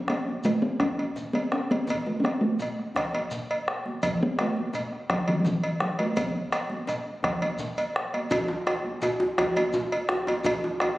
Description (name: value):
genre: west african traditional, West African drum ensemble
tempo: 112 BPM (dotted quarters)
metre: 12/8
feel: straight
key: unclear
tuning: A4 = 440 Hz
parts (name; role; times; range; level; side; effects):
- talking drum; melody; 0.0-7.6 s; E3 to C#4; -26 LUFS; equal; none
- bombo; percussion; 0.1-11.0 s; none; -31 LUFS; equal; none
- congas; percussion; 0.1-10.9 s; none; -36 LUFS; right 2 dB; none
- cowbell; percussion; 0.1-11.0 s; none; -31 LUFS; equal; none
- djembe; percussion; 0.1-10.9 s; none; -41 LUFS; left 3 dB; none
- shekere; percussion; 0.4-10.6 s; none; -43 LUFS; equal; none
- djembe; percussion; 8.3-11.0 s; none; -26 LUFS; equal; none
room: wet recital hall reverb, RT60 1.5 s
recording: recorded on a phone in the room, club reverb, compression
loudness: -25 LUFS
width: side -17 dB against mid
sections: 0.0-8.3 A section; 8.3-11.0 B section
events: none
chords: none